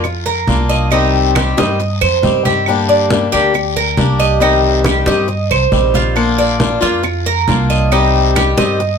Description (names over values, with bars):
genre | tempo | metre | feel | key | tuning
latin, Cuban son and guajira | 137 BPM | 4/4 | straight | unclear | A4 = 439 Hz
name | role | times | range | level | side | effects
picked swing-style acoustic guitar | accompaniment | 0.0-8.8 s | C3 to G4 | -16 LUFS | left 5 dB | none
Cuban tres | arpeggios | 0.0-9.0 s | Eb4 to Eb5 | -16 LUFS | right 3 dB | none
upright bass | bass | 0.0-9.0 s | Bb1 to G2 | -17 LUFS | right 1 dB | none
claves | percussion | 0.0-8.6 s | none | -23 LUFS | right 6 dB | none
congas | percussion | 0.0-9.0 s | none | -19 LUFS | equal | none
guiro | percussion | 0.1-9.0 s | none | -26 LUFS | left 6 dB | none
room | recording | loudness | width
light reverb | none | -11 LUFS | side -6 dB against mid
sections
0.0-9.0 A section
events
none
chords
0.0 Bb; 0.9 Cm; 2.7 Gm; 4.4 Cm; 6.2 Bb; 7.9 Cm